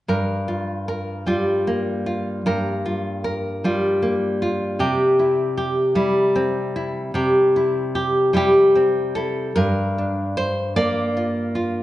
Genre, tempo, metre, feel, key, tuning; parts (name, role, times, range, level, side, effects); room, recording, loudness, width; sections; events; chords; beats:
folk, solo fingerstyle acoustic guitar; 51 BPM (dotted quarters); 6/8; rubato; G dorian; A4 = 440 Hz
nylon-string guitar; solo; 0.1-11.8 s; G2 to D5; -18 LUFS; equal
wet recital hall reverb, RT60 1.6 s; nothing above 10.7 kHz; -18 LUFS; side -15 dB against mid
0.1-9.6 A section; 9.6-11.8 B section
0.1 Gm7; 4.8 C; 9.6 Gm7
| 0.07 1.27 | 2.45 3.62 | 4.79 5.96 | 7.16 8.35 | 9.56 10.76